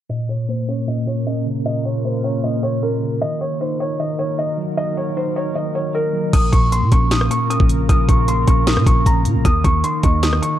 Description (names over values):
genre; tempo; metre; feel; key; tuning
hip hop, trap; 154 BPM; 4/4; half-time; Bb minor; A4 = 436 Hz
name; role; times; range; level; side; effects
felt-muted upright piano; melody; 0.1-10.6 s; Bb4 to Eb6; -22 LUFS; right 1 dB; low-pass filter
mellow tine electric piano; accompaniment; 0.1-10.6 s; Bb2 to Eb5; -21 LUFS; equal; fast stereo tremolo, low-pass filter
deep dark ambient pad; sustained chords; 0.8-10.6 s; Db3 to Bb4; -28 LUFS; left 1 dB; chorus, built-in reverb, low-pass filter
growling 808-style bass; bass; 6.3-10.4 s; Bb1 to Bb2; -19 LUFS; equal; none
trap drum kit; drums; 6.3-10.5 s; crash cymbal, hi-hat, kick drum, rim click, snare drum; -16 LUFS; equal; none
room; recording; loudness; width
little or no reverb; dark, warm production; -16 LUFS; side -12 dB against mid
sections
0.1-6.3 A section; 6.3-10.6 B section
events
filter sweep 0.1-6.3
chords
0.1 Bbm; 3.2 Ebm; 6.3 Bbm; 9.4 Ebm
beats
| 0.10 0.49 0.88 1.27 | 1.66 2.05 2.44 2.83 | 3.22 3.61 4.00 4.38 | 4.78 5.16 5.55 5.94 | 6.33 6.72 7.11 7.50 | 7.89 8.28 8.67 9.06 | 9.45 9.84 10.23